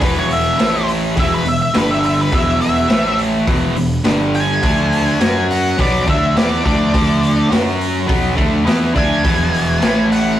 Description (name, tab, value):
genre	blues rock power trio and southern rock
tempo	104 BPM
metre	4/4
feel	straight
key	unclear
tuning	A4 = 441 Hz
part	octave-fuzz lead guitar	melody	0.0-10.4 s	B4 to G#5	-19 LUFS	equal	distortion
part	cranked stack guitar	riff	0.0-10.4 s	E2 to F#4	-16 LUFS	equal	overdrive
part	fuzz picked electric bass	bass	0.0-10.4 s	E1 to F#2	-22 LUFS	equal	overdrive
part	raw garage drum kit	drums	0.0-10.2 s	hi-hat, kick drum, snare drum	-19 LUFS	equal	none
room	moderate stone room reverb, RT60 1.2 s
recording	rough rehearsal-room recording, warm saturation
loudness	-13 LUFS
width	side -12 dB against mid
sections	0.0-10.4 A section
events	lead electric guitar solo 0.0-10.4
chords	0.0 E5; 0.6 A5; 1.2 E5; 1.8 G5; 2.3 E5; 2.9 A5; 3.5 E5; 4.1 G5; 4.6 D5; 5.2 F#5; 5.8 D5; 7.5 F#5; 8.1 D5; 9.2 E; 9.8 A5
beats	| 0.02 0.60 1.17 1.75 | 2.33 2.90 3.48 4.05 | 4.63 5.21 5.78 6.36 | 6.93 7.51 8.09 8.66 | 9.24 9.81 10.39